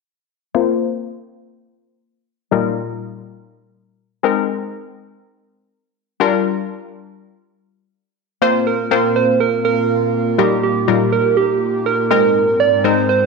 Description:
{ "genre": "pop", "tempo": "122 BPM", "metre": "4/4", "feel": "straight", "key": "Bb mixolydian", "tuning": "A4 = 436 Hz", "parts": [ { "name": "glassy wavetable pluck", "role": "accompaniment", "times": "0.5-13.3 s", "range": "Bb2 to C5", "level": "-18 LUFS", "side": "left 9 dB", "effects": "chorus, low-pass filter" }, { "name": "soft struck synth lead", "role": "melody", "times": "8.4-13.3 s", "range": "G4 to D5", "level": "-16 LUFS", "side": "right 8 dB", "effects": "chorus, slapback echo" }, { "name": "airy breathy pad", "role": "sustained chords", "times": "8.6-13.3 s", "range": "Ab2 to F5", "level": "-21 LUFS", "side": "equal", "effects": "chorus" } ], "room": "wet echo chamber reverb, RT60 1.3 s, digital ambience", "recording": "1960s-style stereo with parts hard left and right", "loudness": "-14 LUFS", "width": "side -3 dB against mid", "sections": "0.6-8.4 A section; 8.4-13.3 B section", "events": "filter sweep on synth pluck 0.6-8.4", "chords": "0.6 Bbsus2; 2.5 Ebadd9/Bb; 4.2 Abadd9; 6.2 Gm7; 8.4 Bbsus2; 10.4 Ebadd9/Bb; 12.1 Abadd9" }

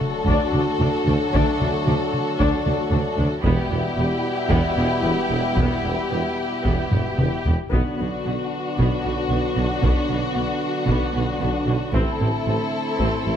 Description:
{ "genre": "cinematic, epic orchestral film score", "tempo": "114 BPM", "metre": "4/4", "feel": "straight", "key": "E minor", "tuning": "A4 = 440 Hz", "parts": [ { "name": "warm symphonic violin section", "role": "melody", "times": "0.0-13.4 s", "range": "F#4 to A4", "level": "-28 LUFS", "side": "left 3 dB", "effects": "none" }, { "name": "warm symphonic violin section", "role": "second line", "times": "0.0-13.4 s", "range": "D4 to F#4", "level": "-30 LUFS", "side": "left 4 dB", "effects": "none" }, { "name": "clear trombone section", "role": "sustained chords", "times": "0.0-13.4 s", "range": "A2 to A3", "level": "-30 LUFS", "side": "right 4 dB", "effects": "none" }, { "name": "warm French horn section", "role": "sustained chords", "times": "0.0-13.4 s", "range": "A3 to E4", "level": "-29 LUFS", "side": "left 3 dB", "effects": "none" }, { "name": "solo taiko drums", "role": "drums", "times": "0.0-13.4 s", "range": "none", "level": "-24 LUFS", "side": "equal", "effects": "none" }, { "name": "impact", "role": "sound effects", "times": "0.0-1.3 s", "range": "none", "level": "-48 LUFS", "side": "equal", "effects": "none" }, { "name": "warm chamber viola section", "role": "accompaniment", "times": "0.3-13.3 s", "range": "B3 to D4", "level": "-29 LUFS", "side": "left 2 dB", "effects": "none" }, { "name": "dark studio double bass section", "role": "bass", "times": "0.3-13.3 s", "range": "E1 to D2", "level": "-28 LUFS", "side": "right 2 dB", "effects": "none" }, { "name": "warm symphonic cello section", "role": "bass", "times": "0.3-13.3 s", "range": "D2 to B2", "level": "-28 LUFS", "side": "right 2 dB", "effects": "none" }, { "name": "warm tuba", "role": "bass", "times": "0.3-13.3 s", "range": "E1 to D2", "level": "-29 LUFS", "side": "right 3 dB", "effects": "none" } ], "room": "light reverb", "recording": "close, detailed microphones", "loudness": "-19 LUFS", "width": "side -9 dB against mid", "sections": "0.0-13.4 A section", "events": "impact 0.0-1.3; drum fill 6.9-7.7", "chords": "0.0 D; 3.4 Em; 7.7 Bm; 11.9 Am" }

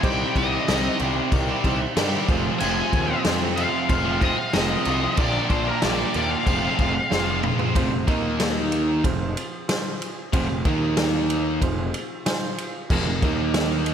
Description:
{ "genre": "classic rock", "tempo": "93 BPM", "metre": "4/4", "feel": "straight", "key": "F minor", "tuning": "A4 = 440 Hz", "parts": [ { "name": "octave-fuzz lead guitar", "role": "melody", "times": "0.0-7.4 s", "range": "Bb4 to Ab5", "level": "-27 LUFS", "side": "left 2 dB", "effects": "wah, distortion, tape echo" }, { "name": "dark grand piano", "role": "accompaniment", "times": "0.0-13.9 s", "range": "Eb4 to Ab5", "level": "-33 LUFS", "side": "right 4 dB", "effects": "slapback echo" }, { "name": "overdriven electric guitar", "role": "riff", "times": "0.0-13.9 s", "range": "F2 to G4", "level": "-28 LUFS", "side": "left 8 dB", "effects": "none" }, { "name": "sludgy distorted guitar", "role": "riff", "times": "0.0-13.9 s", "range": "F2 to G4", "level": "-28 LUFS", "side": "right 10 dB", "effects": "overdrive" }, { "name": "fuzz picked electric bass", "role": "bass", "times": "0.0-13.9 s", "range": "F1 to G2", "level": "-27 LUFS", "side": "equal", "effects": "overdrive" }, { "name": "vintage drum kit", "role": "drums", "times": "0.0-13.9 s", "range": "crash cymbal, kick drum, ride cymbal, snare drum, toms", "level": "-24 LUFS", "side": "equal", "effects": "none" } ], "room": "moderate lush hall reverb, RT60 2.2 s", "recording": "big arena sound", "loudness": "-20 LUFS", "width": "side -8 dB against mid", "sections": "0.0-7.8 A section; 7.8-13.9 B section", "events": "drum fill 7.1-7.8; grand piano fill 11.9-12.9", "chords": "0.0 Cm; 2.3 Fm; 5.2 Bb; 6.5 Fm; 8.1 Eb5; 9.0 Fm; 10.7 Eb5; 11.6 Fm; 13.2 Eb5" }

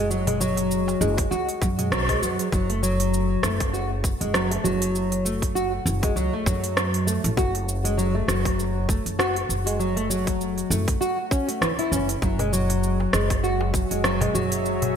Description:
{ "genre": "organic downtempo", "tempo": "99 BPM", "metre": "4/4", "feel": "swing 57% on 16ths", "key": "F# minor", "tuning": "A4 = 440 Hz", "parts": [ { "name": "nylon-string guitar", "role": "arpeggios", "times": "0.0-14.9 s", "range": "E3 to F#4", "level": "-24 LUFS", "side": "equal", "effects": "analog chorus, digital delay" }, { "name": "upright bass", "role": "bass", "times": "0.0-15.0 s", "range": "F#1 to F#2", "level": "-26 LUFS", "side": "equal", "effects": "sidechain pumping" }, { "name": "organic electronic drum kit", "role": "drums", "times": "0.1-14.9 s", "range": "hi-hat, rim click, shaker", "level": "-28 LUFS", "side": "right 1 dB", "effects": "overdrive, gated reverb" }, { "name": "darbuka", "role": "percussion", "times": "0.3-1.9, 12.4-14.9 s", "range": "none", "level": "-32 LUFS", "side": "left 1 dB", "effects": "none" }, { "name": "electronic kick drum", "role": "drums", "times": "1.2-13.9 s", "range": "none", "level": "-25 LUFS", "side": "equal", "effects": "overdrive" }, { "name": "bowed-like drone", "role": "sustained chords", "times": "13.2-15.0 s", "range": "F#3 to E5", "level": "-30 LUFS", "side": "right 1 dB", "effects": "built-in reverb, sidechain pumping" } ], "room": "moderate lush hall reverb, RT60 2.3 s", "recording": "bright 1980s-style digital production", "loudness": "-21 LUFS", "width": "side -8 dB against mid", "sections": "0.0-2.5 A section; 2.5-15.0 A section", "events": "band accent 1.9-2.2", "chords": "0.0 N.C.; 2.5 F#m; 12.2 C#m/F#" }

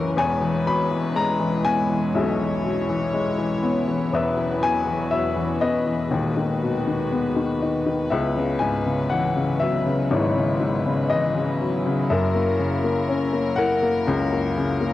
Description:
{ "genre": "acoustic folk-pop ballad", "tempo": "60 BPM", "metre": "4/4", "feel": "straight", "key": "unclear", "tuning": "A4 = 440 Hz", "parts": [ { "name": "warm upright piano", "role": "melody", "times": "0.0-14.9 s", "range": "D#1 to B5", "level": "-21 LUFS", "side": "left 3 dB", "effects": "cassette tape" }, { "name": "warm chamber string section", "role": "sustained chords", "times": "0.0-14.9 s", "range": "E2 to C#5", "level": "-27 LUFS", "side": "right 1 dB", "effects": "cassette tape" } ], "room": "moderate studio reverb, RT60 0.5 s", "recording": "home recording on cassette", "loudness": "-20 LUFS", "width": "side -14 dB against mid", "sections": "0.0-14.9 A section", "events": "none", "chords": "0.2 E6; 4.1 C#m7/E; 6.1 G#m7/D#; 8.1 C#m11; 12.1 F#7" }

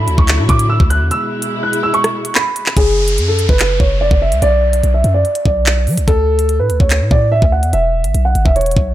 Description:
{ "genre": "hip hop, drill", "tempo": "145 BPM", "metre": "4/4", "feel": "half-time", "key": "F# minor", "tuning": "A4 = 439 Hz", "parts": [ { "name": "dark concert grand piano", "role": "melody", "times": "0.0-8.9 s", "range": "G#4 to F#6", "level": "-16 LUFS", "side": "right 2 dB", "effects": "tape echo" }, { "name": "dark symphonic string section", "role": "sustained chords", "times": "0.0-2.8 s", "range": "B2 to E4", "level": "-21 LUFS", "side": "left 1 dB", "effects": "none" }, { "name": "long sustained 808-style bass", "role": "bass", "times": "0.0-8.9 s", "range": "E1 to F#3", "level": "-15 LUFS", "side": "equal", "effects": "none" }, { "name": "drill drum kit", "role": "drums", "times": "0.1-8.9 s", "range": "handclaps, hi-hat, kick drum, rim click", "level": "-15 LUFS", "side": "equal", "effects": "none" }, { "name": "downlifter", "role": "sound effects", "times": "2.8-6.1 s", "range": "none", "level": "-26 LUFS", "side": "equal", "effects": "none" } ], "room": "digital ambience", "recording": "none", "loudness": "-11 LUFS", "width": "side -13 dB against mid", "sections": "0.0-2.8 A section; 2.8-8.9 B section", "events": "break 1.1-2.8", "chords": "0.0 Dadd9; 1.1 E; 2.8 F#5; 4.4 Bm; 6.1 D5; 7.7 E" }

